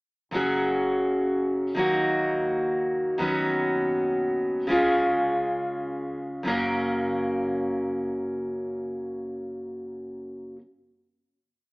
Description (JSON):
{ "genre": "acoustic folk duo or small band", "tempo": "free time", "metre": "none", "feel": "none", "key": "F# major", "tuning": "A4 = 442 Hz", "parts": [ { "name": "picked steel-string acoustic guitar", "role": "accompaniment", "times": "0.3-10.6 s", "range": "F#2 to A#4", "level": "-24 LUFS", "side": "equal", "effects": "none" }, { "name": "upright bass", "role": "bass", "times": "0.3-10.6 s", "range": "F#1 to D#2", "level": "-42 LUFS", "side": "equal", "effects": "none" } ], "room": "moderate large studio reverb, RT60 1.4 s", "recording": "band playing live in one room, AM radio sound", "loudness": "-24 LUFS", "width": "side -28 dB against mid", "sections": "0.3-6.5 interlude; 6.5-10.5 final chord", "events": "slowing down 3.2-6.5", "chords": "0.3 F#sus2; 1.8 D#m; 3.2 Badd9/D#; 4.7 C#; 6.5 F#", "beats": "free time" }